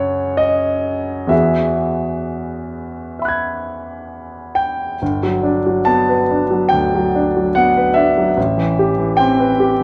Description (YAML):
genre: classical, impressionist solo piano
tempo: 62-76 BPM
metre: 4/4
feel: rubato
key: E major, G major from 5.0 s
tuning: A4 = 441 Hz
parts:
  - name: clear grand piano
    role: solo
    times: 0.0-9.8 s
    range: G1 to G#6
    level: -17 LUFS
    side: equal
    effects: none
room: moderate recital hall reverb, RT60 1.6 s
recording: worn, warbling old tape, cassette tape, warbly pitch drift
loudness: -17 LUFS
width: mono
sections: 0.0-5.0 A section; 5.0-9.8 B section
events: none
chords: 0.0 F#5; 1.3 Eadd9; 5.0 Gmaj7; 8.4 Am9